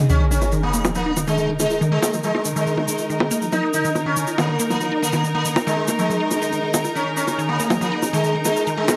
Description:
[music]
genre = psychedelic trance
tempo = 140 BPM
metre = 4/4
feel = straight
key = unclear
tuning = A4 = 438 Hz
[part]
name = evolving wavetable pad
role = sustained chords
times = 0.0-9.0 s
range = Eb4 to Bb4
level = -33 LUFS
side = equal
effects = phaser, built-in reverb
[part]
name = unison pluck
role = riff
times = 0.0-8.9 s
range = Db3 to F4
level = -26 LUFS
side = equal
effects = digital delay
[part]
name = sitar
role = melody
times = 0.1-9.0 s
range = Ab3 to Eb4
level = -26 LUFS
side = equal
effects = phaser, digital delay
[part]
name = tube shaker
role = percussion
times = 0.1-9.0 s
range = none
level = -32 LUFS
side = equal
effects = none
[part]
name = sub drop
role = sound effects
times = 0.1-1.8 s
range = none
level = -25 LUFS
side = equal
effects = none
[part]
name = clear symphonic string section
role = texture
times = 0.1-9.0 s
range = Eb4 to Bb5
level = -30 LUFS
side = equal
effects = none
[part]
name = bongos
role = drums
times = 0.4-9.0 s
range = none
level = -26 LUFS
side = equal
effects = low-pass filter on hats, low-pass filter on perc, low-pass filter on snare, low-pass filter on toms, low-pass filter on room
[sound]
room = moderate lush hall reverb, RT60 1.9 s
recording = dark, warm production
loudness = -21 LUFS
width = mono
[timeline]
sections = 0.1-9.0 A section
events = impact 0.1-1.8; filter sweep on synth arpeggio sound 0.1-9.0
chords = 0.1 Eb5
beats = | 0.10 0.53 0.95 1.38 | 1.81 2.24 2.67 3.10 | 3.52 3.95 4.38 4.81 | 5.24 5.67 6.10 6.53 | 6.95 7.38 7.81 8.24 | 8.67

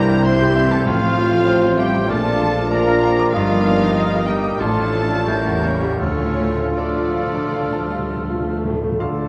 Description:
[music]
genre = classical, romantic movement for piano and orchestra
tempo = 77-100 BPM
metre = 4/4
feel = rubato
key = D minor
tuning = A4 = 440 Hz
[part]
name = clear grand piano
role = melody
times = 0.0-9.3 s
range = A1 to Eb6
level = -23 LUFS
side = equal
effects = none
[part]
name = muted studio violin section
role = melody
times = 0.0-8.3 s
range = C#5 to C6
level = -31 LUFS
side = equal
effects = none
[part]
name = bright small flute group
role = second line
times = 0.0-9.3 s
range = A4 to G6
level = -34 LUFS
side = equal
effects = none
[part]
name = clear clarinet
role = second line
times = 0.0-9.3 s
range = E4 to Bb4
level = -33 LUFS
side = equal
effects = none
[part]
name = mellow oboe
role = second line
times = 0.0-9.3 s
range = A4 to Eb5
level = -32 LUFS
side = equal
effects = none
[part]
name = muted studio violin section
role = second line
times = 0.0-8.8 s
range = A3 to G4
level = -34 LUFS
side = equal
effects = none
[part]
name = muted studio viola section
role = accompaniment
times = 0.0-8.7 s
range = E3 to Bb3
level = -33 LUFS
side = equal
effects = none
[part]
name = warm bassoon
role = accompaniment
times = 0.0-9.3 s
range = Bb3 to F4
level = -30 LUFS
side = equal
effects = none
[part]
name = clear trombone section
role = sustained chords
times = 0.0-8.7 s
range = G2 to G3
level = -32 LUFS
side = equal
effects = none
[part]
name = mellow French horn section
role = sustained chords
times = 0.0-9.3 s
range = F3 to F4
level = -29 LUFS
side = equal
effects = none
[part]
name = dark trumpet section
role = stabs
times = 0.0-8.3 s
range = C#4 to C5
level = -28 LUFS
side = equal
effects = none
[part]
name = muted studio cello section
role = bass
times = 0.0-9.3 s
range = C#3 to C4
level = -30 LUFS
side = equal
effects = none
[part]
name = muted studio double bass section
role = bass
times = 0.0-9.3 s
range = G1 to D2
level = -29 LUFS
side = equal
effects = none
[part]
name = warm tuba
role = bass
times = 0.0-8.7 s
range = G1 to D2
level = -30 LUFS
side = equal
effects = none
[part]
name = timpani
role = percussion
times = 0.9-1.7, 6.0-9.3 s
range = A2 to D3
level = -32 LUFS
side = equal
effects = none
[sound]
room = wet recital hall reverb, RT60 1.4 s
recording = dark, warm production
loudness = -18 LUFS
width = mono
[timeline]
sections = 0.0-9.0 A section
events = timpani fill 6.0-9.0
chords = 0.0 C; 0.9 F/A; 2.1 Bb; 3.3 Eb/G; 4.6 Dm/A; 5.3 A7b9; 6.0 Dm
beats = 0.26 | 0.87 1.47 2.08 2.71 | 3.33 3.96 4.59 5.26 | 6.00 6.77 7.53 8.28 | 9.00

